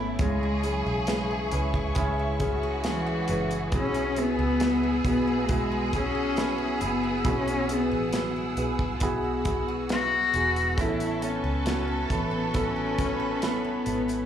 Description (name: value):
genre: pop ballad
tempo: 68 BPM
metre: 4/4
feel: straight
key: E major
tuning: A4 = 443 Hz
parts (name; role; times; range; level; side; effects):
- dark cello; melody; 0.0-14.3 s; E3 to F#4; -28 LUFS; left 2 dB; plate reverb, slapback echo, ping-pong delay
- warm symphonic violin section; second line; 0.0-14.3 s; E4 to A4; -34 LUFS; equal; plate reverb, slapback echo
- felt-muted upright piano; accompaniment; 0.0-14.3 s; A2 to B4; -31 LUFS; right 1 dB; plate reverb, slapback echo
- muted studio string section; sustained chords; 0.0-14.3 s; A3 to E6; -37 LUFS; left 1 dB; plate reverb
- picked steel-string acoustic guitar; arpeggios; 0.0-14.3 s; B2 to B4; -38 LUFS; right 4 dB; none
- vintage muted fingered electric bass; bass; 0.0-14.3 s; E1 to C#2; -32 LUFS; right 1 dB; none
- modern studio drum kit; drums; 0.2-14.3 s; hi-hat, kick drum, snare drum; -31 LUFS; equal; none
room: moderate club reverb, RT60 0.8 s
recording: live gig heard through the venue's PA, club reverb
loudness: -24 LUFS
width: side -9 dB against mid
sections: 0.0-14.3 A section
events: none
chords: 0.2 C#m; 3.7 Eadd9; 10.8 Aadd9